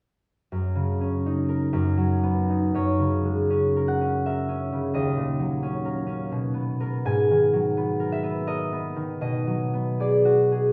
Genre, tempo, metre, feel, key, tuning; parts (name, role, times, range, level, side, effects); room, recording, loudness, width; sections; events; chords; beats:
classical, solo harp piece; 83 BPM; 3/4; uneven beats, rubato; F# mixolydian; A4 = 440 Hz
concert harp; solo; 0.5-10.7 s; D#2 to G#5; -24 LUFS; equal
wet recital hall reverb, RT60 1.4 s; heard from further back in the room; -25 LUFS; mono
0.5-2.7 A section; 2.7-10.7 B section
0.5 F#5; 1.6 Bmaj7/F#; 2.7 F#add9; 4.9 D#m7; 6.3 Bmaj7; 7.1 G#m9; 9.2 Bm6
| 0.51 1.25 1.98 | 2.74 3.49 4.25 | 4.95 5.62 6.30 | 7.06 7.77 8.48 | 9.22 9.99